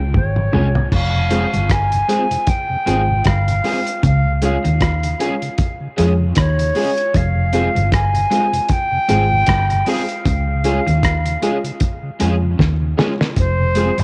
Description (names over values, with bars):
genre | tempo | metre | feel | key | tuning
roots reggae | 77 BPM | 4/4 | swing 57% on 16ths | F minor | A4 = 439 Hz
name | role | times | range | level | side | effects
silver concert flute | melody | 0.0-14.0 s | C5 to C6 | -23 LUFS | equal | cassette tape, dub echo
mellow tonewheel organ | accompaniment | 0.0-14.0 s | F2 to F4 | -30 LUFS | equal | none
clean electric guitar | riff | 0.0-14.0 s | F2 to F3 | -27 LUFS | equal | none
vintage muted fingered electric bass | bass | 0.0-14.0 s | F1 to F2 | -20 LUFS | equal | none
cloth-damped thuddy drum kit | drums | 0.1-14.0 s | crash cymbal, hi-hat, kick drum, rim click, snare drum, toms | -22 LUFS | equal | cassette tape
electric guitar at the edge of break-up | accompaniment | 0.5-13.9 s | Ab3 to Ab4 | -30 LUFS | equal | ensemble chorus, cassette tape, dub echo
dark upright piano | stabs | 0.5-13.9 s | Ab3 to Ab4 | -26 LUFS | equal | cassette tape
room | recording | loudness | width
moderate spring reverb, RT60 2.6 s | home recording on cassette | -17 LUFS | mono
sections
0.9-13.4 A section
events
drum fill 0.1-0.9, 12.6-13.4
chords
0.0 Db; 0.9 Fm; 4.0 Db; 7.1 Fm; 10.3 Db; 13.4 Fm